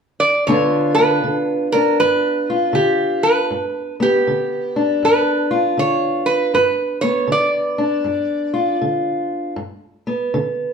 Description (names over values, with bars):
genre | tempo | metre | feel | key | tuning
acoustic country blues, solo or duo | 79 BPM | 4/4 | swing 64% on 8ths | G mixolydian | A4 = 439 Hz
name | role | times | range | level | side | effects
metal-body resonator slide guitar | melody | 0.2-8.8 s | G4 to D5 | -18 LUFS | right 2 dB | plate reverb
fingerpicked steel-string acoustic guitar | accompaniment | 0.5-10.7 s | G2 to F4 | -19 LUFS | left 1 dB | none
room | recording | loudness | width
wet studio reverb, RT60 0.8 s | heard from further back in the room | -16 LUFS | side -6 dB against mid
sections
0.4-10.7 A section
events
none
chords
0.4 G7